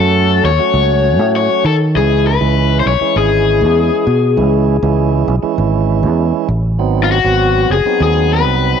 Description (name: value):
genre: straight-eighth soul blues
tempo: 99 BPM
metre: 4/4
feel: straight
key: C# minor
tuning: A4 = 440 Hz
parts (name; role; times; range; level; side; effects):
- raw garage guitar; melody; 0.0-8.8 s; E#4 to C#5; -14 LUFS; left 10 dB; overdrive, slapback echo
- tonewheel organ; accompaniment; 0.0-8.8 s; E3 to F#4; -18 LUFS; right 14 dB; overdrive, stopped rotary speaker
- fingered electric bass; bass; 0.0-8.7 s; F#1 to D#3; -14 LUFS; right 1 dB; none
room: light reverb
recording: 1960s-style stereo with parts hard left and right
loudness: -11 LUFS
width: side -7 dB against mid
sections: 0.0-8.8 A section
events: none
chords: 0.0 F#m; 2.0 C#m; 6.8 G#7#9